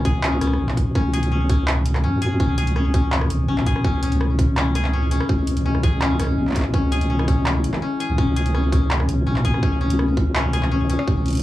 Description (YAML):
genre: half-time drum and bass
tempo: 166 BPM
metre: 4/4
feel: half-time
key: C# minor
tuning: A4 = 438 Hz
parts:
  - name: koto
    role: arpeggios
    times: 0.0-11.4 s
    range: C#4 to G#4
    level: -25 LUFS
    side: left 4 dB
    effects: cassette tape, tape echo
  - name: deep soft wobble bass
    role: bass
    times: 0.0-11.4 s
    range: G#1 to F#2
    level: -20 LUFS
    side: equal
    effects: chorus
  - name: drum and bass drum kit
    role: drums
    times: 0.1-11.4 s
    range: handclaps, hi-hat, rim click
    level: -27 LUFS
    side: right 1 dB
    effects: overdrive, cassette tape
  - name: electronic kick drum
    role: drums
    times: 0.1-11.1 s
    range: none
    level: -20 LUFS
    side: equal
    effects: overdrive, cassette tape
  - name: deep dark ambient pad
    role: sustained chords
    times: 4.0-11.4 s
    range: C#4 to D#5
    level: -29 LUFS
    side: left 1 dB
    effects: chorus, built-in reverb, vintage 12-bit sampler grit, sidechain pumping, cassette tape
room: little or no reverb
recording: home recording on cassette, small room ambience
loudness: -18 LUFS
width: side -15 dB against mid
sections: 0.0-11.4 A section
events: kick drops out 2.0-2.4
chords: 0.0 C#madd9